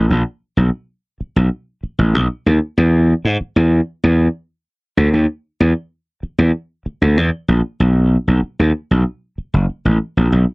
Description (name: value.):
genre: funk.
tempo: 96 BPM.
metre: 4/4.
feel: straight.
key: B mixolydian.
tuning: A4 = 440 Hz.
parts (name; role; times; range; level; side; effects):
gritty slap bass; solo; 0.0-10.4 s; F#1 to G#2; -13 LUFS; equal; overdrive.
room: little or no reverb.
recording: dry, close 1970s-style studio recording.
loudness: -14 LUFS.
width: side -34 dB against mid.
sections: 0.0-7.8 A section; 7.8-10.5 B section.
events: none.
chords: none.